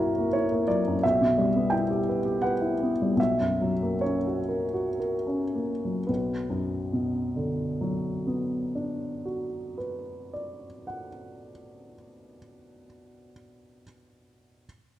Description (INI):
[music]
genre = classical, romantic character piece for solo piano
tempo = 51-89 BPM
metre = 3/4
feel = rubato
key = B minor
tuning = A4 = 442 Hz
[part]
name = warm upright piano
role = solo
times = 0.0-14.7 s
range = B1 to G5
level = -25 LUFS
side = equal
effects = none
[sound]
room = wet recital hall reverb, RT60 1.6 s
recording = none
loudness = -25 LUFS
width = side -13 dB against mid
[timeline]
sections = 0.0-6.1 A section; 6.1-12.4 B section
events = slowing down 0.0-6.1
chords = 0.0 F#7/B; 1.0 Em/B; 3.2 F#7/B; 6.1 Bm